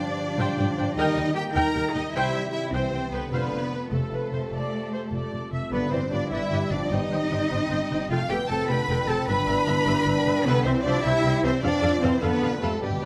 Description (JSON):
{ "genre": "cinematic", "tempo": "101 BPM (dotted quarters)", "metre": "12/8", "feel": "straight", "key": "unclear", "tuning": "A4 = 439 Hz", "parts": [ { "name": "warm symphonic violin section", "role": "melody", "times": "0.0-13.1 s", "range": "G4 to B5", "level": "-35 LUFS", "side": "equal", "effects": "none" }, { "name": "warm symphonic violin section", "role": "second line", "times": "0.0-13.1 s", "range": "G4 to B5", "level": "-37 LUFS", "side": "equal", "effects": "none" }, { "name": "mellow French horn section", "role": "sustained chords", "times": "0.0-13.1 s", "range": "B2 to Eb4", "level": "-33 LUFS", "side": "equal", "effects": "none" }, { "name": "concert harp", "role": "arpeggios", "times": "0.0-13.1 s", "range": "F2 to D6", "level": "-35 LUFS", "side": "equal", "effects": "none" }, { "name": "rich studio cello section", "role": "bass", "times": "0.0-13.1 s", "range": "G3 to B4", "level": "-30 LUFS", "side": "equal", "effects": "none" }, { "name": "rich symphonic viola section", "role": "accompaniment", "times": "0.4-13.1 s", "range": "A4 to G5", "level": "-35 LUFS", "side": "equal", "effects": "none" }, { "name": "warm symphonic double bass section", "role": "bass", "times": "0.4-13.1 s", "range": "F1 to G2", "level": "-31 LUFS", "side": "equal", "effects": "none" }, { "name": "timpani", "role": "percussion", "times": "12.8-13.0 s", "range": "G2", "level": "-36 LUFS", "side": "equal", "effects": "none" } ], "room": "moderate scoring stage reverb, RT60 1.8 s", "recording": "none", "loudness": "-25 LUFS", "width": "mono", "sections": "0.0-13.1 A section", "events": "timpani fill 12.8", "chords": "0.0 Gsus4; 1.0 Eb; 2.1 C; 3.3 F; 5.7 G; 6.9 Cm/G; 8.1 Fadd9; 9.3 G6; 10.5 C; 11.6 F", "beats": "0.39 | 0.97 1.56 2.15 2.73 | 3.33 3.92 4.52 5.12 | 5.72 6.32 6.91 7.51 | 8.10 8.70 9.28 9.87 | 10.46 11.04 11.63 12.22 | 12.82" }